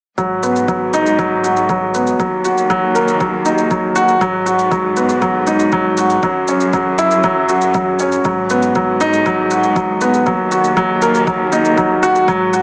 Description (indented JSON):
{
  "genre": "piano and strings electronica",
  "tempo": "119 BPM",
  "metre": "4/4",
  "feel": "straight",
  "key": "G# minor",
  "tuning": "A4 = 440 Hz",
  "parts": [
    { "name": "clear upright piano", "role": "riff", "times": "0.2-12.6 s", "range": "F#3 to A#4", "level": "-16 LUFS", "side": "equal", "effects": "low-pass filter, tape echo" },
    { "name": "rich studio cello section", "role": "bass", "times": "0.2-12.6 s", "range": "D#2 to G#2", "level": "-25 LUFS", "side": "equal", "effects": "sidechain pumping" },
    { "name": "electronic kick drum", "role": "drums", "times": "0.2-12.4 s", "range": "none", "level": "-30 LUFS", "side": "equal", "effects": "overdrive" },
    { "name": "shaker", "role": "drums", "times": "0.2-12.6 s", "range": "none", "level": "-32 LUFS", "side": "equal", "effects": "overdrive" }
  ],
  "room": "moderate lush hall reverb, RT60 1.9 s, small room ambience",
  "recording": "small speaker sound",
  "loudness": "-15 LUFS",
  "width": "mono",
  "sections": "0.2-12.6 A section",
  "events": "none",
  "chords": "0.2 G#m7; 2.2 D#m; 4.2 G#m7; 6.2 F#5; 8.2 G#m7; 10.3 D#m",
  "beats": "| 0.18 0.69 1.19 1.69 | 2.20 2.70 3.21 3.71 | 4.21 4.72 5.22 5.73 | 6.23 6.74 7.24 7.74 | 8.25 8.75 9.26 9.76 | 10.27 10.77 11.27 11.78 | 12.28"
}